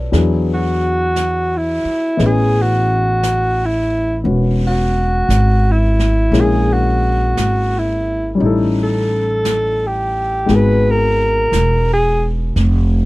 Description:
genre	jazz ballad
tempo	58 BPM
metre	4/4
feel	swing 66% on 8ths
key	unclear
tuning	A4 = 440 Hz
part	dark upright piano	accompaniment	0.0-12.6 s	E3 to D#5	-21 LUFS	left 4 dB	none
part	upright bass	bass	0.0-13.1 s	E1 to E2	-16 LUFS	equal	none
part	jazz brush drum kit	drums	0.1-13.1 s	brushed snare drum, hi-hat, snare drum	-30 LUFS	right 1 dB	none
part	breathy alto saxophone	melody	0.5-12.3 s	E4 to B4	-17 LUFS	equal	none
room	little or no reverb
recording	none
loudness	-13 LUFS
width	side -19 dB against mid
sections	0.0-13.1 A section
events	alto saxophone solo 0.0-13.1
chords	0.1 E9; 2.2 Amaj9#11; 6.3 A#m7b5; 8.4 A7#11; 10.5 G#m9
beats	0.12 1.16 | 2.19 3.23 4.26 5.29 | 6.33 7.36 8.40 9.44 | 10.48 11.52 12.55

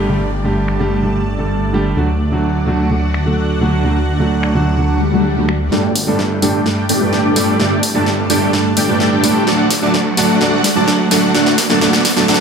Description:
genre	EDM, festival progressive house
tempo	128 BPM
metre	4/4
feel	straight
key	unclear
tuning	A4 = 443 Hz
part	warm concert grand piano	accompaniment	0.0-12.4 s	G2 to B4	-17 LUFS	right 2 dB	dub echo
part	lush unison pad	sustained chords	0.0-12.4 s	A3 to A5	-22 LUFS	right 1 dB	chorus, phaser
part	detuned saw bass	bass	0.0-12.4 s	G1 to D2	-20 LUFS	equal	high-pass filter
part	downlifter, swell and riser	sound effects	0.0-12.4 s	none	-23 LUFS	left 2 dB	none
part	big-room dance drum kit	drums	0.7-12.4 s	finger snaps, hi-hat, snare drum	-19 LUFS	equal	high-pass filter on cymbals, low-pass filter on cymbals, high-pass filter on perc, low-pass filter on perc, high-pass filter on hats, low-pass filter on hats, high-pass filter on snare, low-pass filter on snare
part	dense compressed supersaw	riff	5.7-12.4 s	A3 to A5	-15 LUFS	equal	low-pass filter, dub echo
room	moderate digital room reverb, RT60 1.2 s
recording	none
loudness	-12 LUFS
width	side -6 dB against mid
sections	0.0-5.7 A section; 5.7-12.4 B section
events	swell 5.0-5.7; build-up 5.7-12.4; drum fill 5.7-12.4; filter sweep on supersaw synth 5.7-12.4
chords	0.0 Gsus2; 2.0 D; 5.7 Gsus2; 9.5 D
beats	| 0.10 0.56 1.03 1.50 | 1.97 2.44 2.91 3.38 | 3.85 4.32 4.78 5.25 | 5.72 6.19 6.66 7.13 | 7.60 8.06 8.53 9.00 | 9.47 9.94 10.41 10.88 | 11.35 11.81 12.28

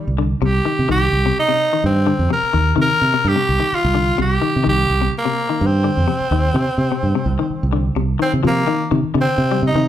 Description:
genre	afrobeat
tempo	127 BPM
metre	4/4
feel	swing 55% on 16ths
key	C minor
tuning	A4 = 440 Hz
part	raspy tenor saxophone	melody	0.0-9.9 s	G3 to Bb4	-19 LUFS	right 1 dB	none
part	semi-hollow electric guitar	arpeggios	0.0-9.9 s	C3 to G3	-22 LUFS	left 7 dB	none
part	fingered electric bass	bass	0.1-9.9 s	C2 to C3	-18 LUFS	right 1 dB	none
room	moderate large studio reverb, RT60 0.8 s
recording	band playing live in one room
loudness	-15 LUFS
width	side -11 dB against mid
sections	0.0-8.4 A section; 8.4-9.9 B section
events	none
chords	0.0 Cm; 8.4 Cm9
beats	0.42 | 0.89 1.36 1.84 2.31 | 2.78 3.25 3.73 4.20 | 4.67 5.14 5.61 6.08 | 6.56 7.03 7.50 7.97 | 8.45 8.92 9.39 9.86

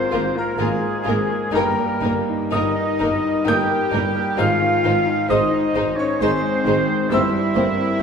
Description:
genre	classical, romantic movement for piano and orchestra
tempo	59-68 BPM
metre	3/4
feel	rubato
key	Ab major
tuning	A4 = 440 Hz
part	bright concert grand piano	melody	0.0-8.0 s	G2 to G6	-22 LUFS	left 1 dB	none
part	mellow silver concert flute	second line	0.0-8.0 s	Ab4 to G5	-27 LUFS	right 1 dB	none
part	warm clarinet	second line	0.0-8.0 s	Ab4 to G5	-30 LUFS	left 2 dB	none
part	warm oboe	second line	0.0-8.0 s	Ab4 to G5	-28 LUFS	right 4 dB	none
part	dark French horn section	sustained chords	0.0-8.0 s	Ab3 to G4	-27 LUFS	left 5 dB	none
part	warm symphonic cello section	bass	0.0-8.0 s	Ab3 to G4	-29 LUFS	right 4 dB	none
part	warm studio violin section	melody	0.1-7.6 s	Bb4 to C5	-28 LUFS	left 3 dB	none
part	warm studio violin section	second line	0.1-7.6 s	C4 to F4	-30 LUFS	left 3 dB	none
part	dark chamber viola section	accompaniment	0.1-8.0 s	Ab3 to Bb3	-28 LUFS	right 2 dB	none
part	mellow tuba	bass	0.1-8.0 s	G1 to Ab1	-31 LUFS	right 4 dB	none
part	warm chamber double bass section	bass	0.1-7.6 s	G1 to Ab1	-30 LUFS	right 4 dB	none
room	wet scoring stage reverb, RT60 1.6 s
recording	minimal, uncompressed stereo recording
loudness	-17 LUFS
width	side -6 dB against mid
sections	0.0-8.0 A section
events	none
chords	0.0 Bbm7/Ab; 1.5 Eb/G; 4.4 Ab; 7.1 C7/G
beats	0.59 | 1.54 2.53 3.47 | 4.38 5.29 6.21 | 7.11 8.00

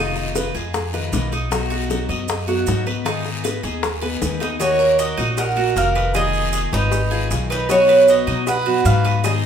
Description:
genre	latin, Cuban son and guajira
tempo	155 BPM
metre	4/4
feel	straight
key	unclear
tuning	A4 = 440 Hz
part	picked steel-string acoustic guitar	accompaniment	0.0-9.5 s	Cb3 to Ab4	-27 LUFS	left 7 dB	none
part	Cuban tres	arpeggios	0.0-9.5 s	Eb4 to D#5	-25 LUFS	right 6 dB	none
part	upright bass	bass	0.0-9.5 s	F1 to B2	-23 LUFS	left 1 dB	none
part	bongos and cowbell	percussion	0.2-9.4 s	none	-27 LUFS	left 4 dB	none
part	maracas	percussion	0.2-9.4 s	none	-34 LUFS	right 8 dB	none
part	guiro	percussion	0.4-9.5 s	none	-33 LUFS	left 4 dB	none
part	Cuban tres	melody	4.4-9.5 s	Cb5 to Gb5	-17 LUFS	right 2 dB	none
part	clear trumpet	second line	4.4-9.5 s	Eb4 to B4	-26 LUFS	right 4 dB	none
room	wet large studio reverb, RT60 0.9 s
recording	band playing live in one room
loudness	-16 LUFS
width	side -8 dB against mid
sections	0.0-4.6 A section; 4.6-9.5 B section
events	none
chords	0.0 Fm7b5; 1.5 B; 3.1 Abm; 4.6 Ebm; 6.1 Fm7b5; 7.7 B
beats	0.35 0.74 1.12 | 1.51 1.90 2.29 2.67 | 3.06 3.44 3.83 4.22 | 4.60 4.99 5.38 5.76 | 6.15 6.53 6.92 7.31 | 7.69 8.08 8.47 8.85 | 9.24

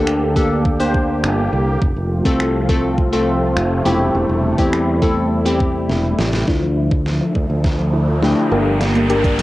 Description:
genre	dance-pop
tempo	103 BPM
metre	4/4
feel	straight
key	D minor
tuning	A4 = 443 Hz
part	glassy wavetable pluck	accompaniment	0.0-9.4 s	A3 to C5	-18 LUFS	left 1 dB	chorus, sidechain pumping, low-pass filter, cassette tape
part	sweeping resonant pad	sustained chords	0.0-9.4 s	C3 to E5	-22 LUFS	equal	chorus, sidechain pumping, low-pass filter, cassette tape
part	fingered electric bass	bass	0.0-9.4 s	E1 to E2	-20 LUFS	equal	sidechain pumping
part	pop drum kit	drums	0.1-9.4 s	finger snaps, hi-hat, kick drum, snare drum	-20 LUFS	equal	overdrive, cassette tape
part	analog pluck	arpeggios	6.5-9.3 s	D3 to D5	-27 LUFS	right 1 dB	none
part	riser	sound effects	7.2-9.4 s	none	-27 LUFS	right 1 dB	none
room	light reverb, digital ambience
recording	home recording on cassette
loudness	-15 LUFS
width	side -17 dB against mid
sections	0.0-6.5 A section; 6.5-9.4 B section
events	drum fill 5.9-6.5, 6.5-9.4; build-up 6.5-9.4; filter sweep 6.5-9.4; riser 7.2-9.4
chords	0.0 Gmadd9; 1.8 F; 3.9 Am7/E; 6.5 Dmadd9; 8.5 Gm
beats	0.07 0.65 1.24 | 1.82 2.40 2.98 3.56 | 4.15 4.73 5.31 5.89 | 6.48 7.06 7.64 8.22 | 8.81 9.39

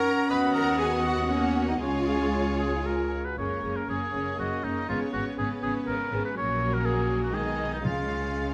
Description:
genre	quick classical-period movement for symphony orchestra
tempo	113-124 BPM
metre	3/4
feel	rubato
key	F# major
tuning	A4 = 443 Hz
part	clear clarinet	second line	0.0-2.8 s	C#4 to B4	-35 LUFS	equal	none
part	mellow hollow flute section	second line	0.0-3.1 s	F#5 to G#5	-36 LUFS	equal	none
part	rich studio violin section	second line	0.0-8.5 s	G#3 to B5	-41 LUFS	equal	none
part	warm oboe	second line	0.0-8.5 s	D#4 to D#5	-34 LUFS	equal	none
part	mellow French horn section	sustained chords	0.0-8.5 s	G#3 to F#4	-34 LUFS	equal	none
part	warm studio cello section	bass	0.0-8.5 s	C#2 to B4	-37 LUFS	equal	none
part	warm studio violin section	melody	0.3-8.5 s	A#4 to F#5	-41 LUFS	equal	none
part	rich studio viola section	accompaniment	0.3-8.5 s	C#3 to G#4	-35 LUFS	equal	none
part	warm studio double bass section	bass	0.3-8.5 s	F#1 to D#2	-36 LUFS	equal	none
part	timpani	percussion	7.8-8.5 s	C#3	-37 LUFS	equal	none
room	moderate recital hall reverb, RT60 1.5 s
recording	none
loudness	-27 LUFS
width	mono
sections	0.0-3.4 A section; 3.4-8.5 B section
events	none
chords	0.3 B/D#; 1.8 C#; 3.4 F#; 4.9 C#5/G#; 6.4 F#/A#; 7.3 G#m/B; 7.8 C#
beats	| 0.29 0.79 1.29 | 1.81 2.34 2.86 | 3.38 3.89 4.39 | 4.89 5.39 5.88 | 6.37 6.85 7.34 | 7.84 8.35

